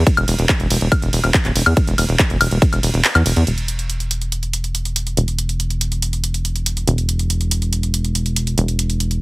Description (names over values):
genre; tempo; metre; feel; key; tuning
psychedelic trance; 141 BPM; 4/4; straight; unclear; A4 = 440 Hz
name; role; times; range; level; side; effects
tight sequencer bass; bass; 0.0-9.2 s; D1 to E2; -18 LUFS; equal; tube saturation
electronic kick drum; drums; 0.1-2.7 s; none; -16 LUFS; equal; none
techno drum kit; drums; 0.1-9.2 s; handclaps, hi-hat, ride cymbal, woodblock; -20 LUFS; equal; none
room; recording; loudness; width
little or no reverb; heavily compressed radio sound; -16 LUFS; side -22 dB against mid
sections
0.0-3.5 A section; 3.5-9.2 B section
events
drop 0.0-3.5; kick drops out 3.0-3.5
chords
none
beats
| 0.07 0.49 0.92 1.34 | 1.77 2.19 2.62 3.04 | 3.47 3.90 4.32 4.75 | 5.17 5.60 6.02 6.45 | 6.88 7.30 7.73 8.15 | 8.58 9.00